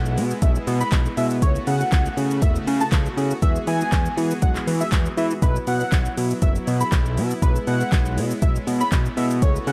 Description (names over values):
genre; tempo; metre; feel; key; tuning
dance-pop; 120 BPM; 4/4; straight; E major; A4 = 440 Hz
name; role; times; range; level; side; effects
unison lead; melody; 0.0-9.7 s; B4 to B5; -30 LUFS; equal; sidechain pumping, digital delay
mellow tine electric piano; accompaniment; 0.0-9.7 s; F#3 to C#5; -34 LUFS; equal; sidechain pumping
soft supersaw; sustained chords; 0.0-9.7 s; C#3 to G#4; -35 LUFS; equal; sidechain pumping
fat analog bass; bass; 0.0-9.7 s; E1 to E3; -25 LUFS; equal; sidechain pumping
smooth R&B drum kit; drums; 0.1-9.7 s; handclaps, hi-hat, kick drum, shaker, snare drum; -24 LUFS; equal; none
room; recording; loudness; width
digital ambience; dark, warm production; -21 LUFS; mono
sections
0.0-9.7 A section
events
none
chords
0.0 E/B; 1.4 A6/C#; 3.4 Eadd9; 5.4 Bsus4; 7.4 E/B